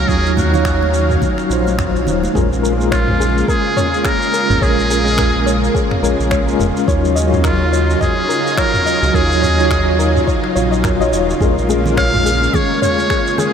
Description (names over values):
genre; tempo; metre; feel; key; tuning
sunset chillout; 106 BPM; 4/4; swing 58% on 16ths; Bb minor; A4 = 441 Hz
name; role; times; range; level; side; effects
trumpet with metal mute; melody; 0.0-13.5 s; F4 to F5; -20 LUFS; equal; ping-pong delay
mellow tine electric piano; accompaniment; 0.0-13.5 s; Gb3 to F5; -18 LUFS; moving between left 4 dB and right 7 dB; medium stereo tremolo, auto-pan, ping-pong delay
lush unison pad; sustained chords; 0.0-13.5 s; Db3 to F5; -22 LUFS; right 1 dB; chorus
round analog bass; bass; 0.0-12.5 s; Eb1 to Eb2; -18 LUFS; equal; none
deep house drum kit; drums; 0.1-13.5 s; finger snaps, shaker, toms; -24 LUFS; equal; none
electronic kick drum; drums; 0.1-13.2 s; none; -20 LUFS; equal; none
congas; percussion; 0.4-2.3, 11.7-13.5 s; none; -28 LUFS; right 1 dB; none
soft round pluck; arpeggios; 2.4-13.5 s; Ab4 to Eb5; -24 LUFS; left 3 dB; chorus, ping-pong delay
room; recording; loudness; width
wet huge ambient reverb, RT60 7.8 s; dreamy mix soaked in reverb; -13 LUFS; side -7 dB against mid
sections
0.0-2.4 A section; 2.4-13.5 B section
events
none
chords
0.0 Ebm9; 2.4 Bbm7; 6.9 Ebm9; 11.4 Bbm7